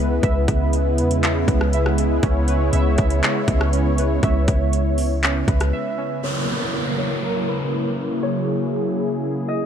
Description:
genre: hip hop, atmospheric cloud-rap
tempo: 120 BPM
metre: 4/4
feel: half-time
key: C# dorian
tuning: A4 = 441 Hz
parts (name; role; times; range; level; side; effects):
- warm analog pad; sustained chords; 0.0-9.7 s; C#3 to C#5; -22 LUFS; equal; chorus, sidechain pumping, low-pass filter
- warbly lo-fi synth keys; arpeggios; 0.0-6.2 s; C#4 to E5; -27 LUFS; right 3 dB; chorus, low-pass filter, ping-pong delay
- clean 808-style bass; bass; 0.0-5.7 s; C#2 to E2; -20 LUFS; equal; none
- trap drum kit; drums; 0.2-5.7 s; handclaps, hi-hat, kick drum, rim click; -22 LUFS; equal; overdrive, vintage 12-bit sampler grit
- Celtic harp; melody; 6.2-9.7 s; A#4 to D#5; -29 LUFS; right 1 dB; low-pass filter, ping-pong delay
- downlifter; sound effects; 6.2-9.7 s; none; -28 LUFS; right 1 dB; none
room: light reverb, digital ambience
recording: none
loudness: -18 LUFS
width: side -8 dB against mid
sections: 0.0-6.2 A section; 6.2-9.7 B section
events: break 5.7-6.2; filter sweep 6.2-9.7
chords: 0.0 C#m7; 6.2 F#7

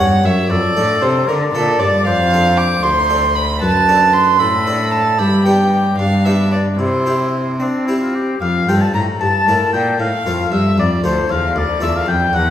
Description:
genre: classical, baroque-style sonata movement with continuo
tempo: 77 BPM (dotted quarters)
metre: 6/8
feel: straight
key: C major, F major from 8.4 s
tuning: A4 = 440 Hz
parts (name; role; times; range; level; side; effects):
- mellow oboe; melody; 0.0-12.5 s; D4 to Bb5; -20 LUFS; left 5 dB; none
- warm violin; second line; 0.0-12.5 s; A4 to D6; -17 LUFS; right 3 dB; none
- harpsichord; accompaniment; 0.0-12.5 s; D2 to D5; -19 LUFS; left 1 dB; none
- rich cello; bass; 0.0-12.5 s; D2 to C4; -19 LUFS; equal; none
room: wet recital hall reverb, RT60 1.5 s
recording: heard from further back in the room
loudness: -13 LUFS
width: side -10 dB against mid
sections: 0.0-8.4 A section; 8.4-12.5 A section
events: none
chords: 0.0 C#dim; 0.5 Dm/F; 2.1 Dm7/F; 3.6 D7/F#; 5.2 G; 6.8 C; 8.4 F; 9.2 Edim/G; 10.0 F; 11.6 Dm

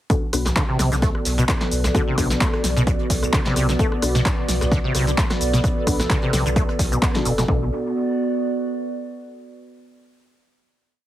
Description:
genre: acid house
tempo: 130 BPM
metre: 4/4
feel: swing 55% on 16ths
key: B minor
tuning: A4 = 440 Hz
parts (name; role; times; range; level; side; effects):
- dark analog pad; sustained chords; 0.9-7.7 s; B3 to D5; -30 LUFS; equal; chorus, sidechain pumping
- acid bass, saw; riff; 0.1-7.7 s; B1 to B3; -24 LUFS; equal; overdrive, ensemble chorus, sidechain pumping, dub echo
- deep mellow chord stab; stabs; 0.1-7.7 s; B3 to B4; -29 LUFS; left 3 dB; chorus, phaser, dub echo
- electronic kick drum; drums; 0.1-7.6 s; none; -21 LUFS; equal; overdrive
- punchy analog drum machine; drums; 0.1-7.5 s; handclaps, hi-hat, rim click, shaker, snare drum; -25 LUFS; equal; overdrive
- soft brush drum kit; drums; 0.1-7.4 s; hi-hat, snare drum; -38 LUFS; right 2 dB; none
- warbly tape-like pad; texture; 0.7-9.3 s; B3 to D5; -27 LUFS; right 2 dB; chorus, built-in reverb, sidechain pumping
- warm sub bass; bass; 0.3-7.7 s; F#1 to B1; -25 LUFS; equal; tube saturation, sidechain pumping
room: moderate studio ambience, RT60 0.5 s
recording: heavily compressed radio sound, multiband compression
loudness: -18 LUFS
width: side -13 dB against mid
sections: 0.1-7.5 drop; 7.5-9.3 final chord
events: drop 0.1-7.5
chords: 0.1 Bm7

